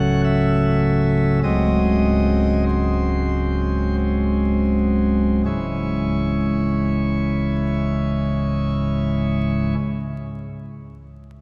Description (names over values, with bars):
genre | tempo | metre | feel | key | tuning
classical, chorale-style piece for pipe organ | 40-53 BPM | 3/4 | rubato | C# minor | A4 = 440 Hz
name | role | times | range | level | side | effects
chamber organ, principal chorus | solo | 0.0-9.8 s | C#1 to F#5 | -20 LUFS | equal | none
room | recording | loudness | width
wet cathedral reverb, RT60 4.3 s | recorded in a church or concert hall, vinyl crackle | -20 LUFS | mono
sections
0.0-5.5 A section; 5.5-9.8 B section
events
slowing down 0.0-5.5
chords
0.0 F#m/C#; 1.4 G#7/C#; 5.5 C#m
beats
0.25 | 1.43 2.67 4.00 | 5.46 6.89 8.35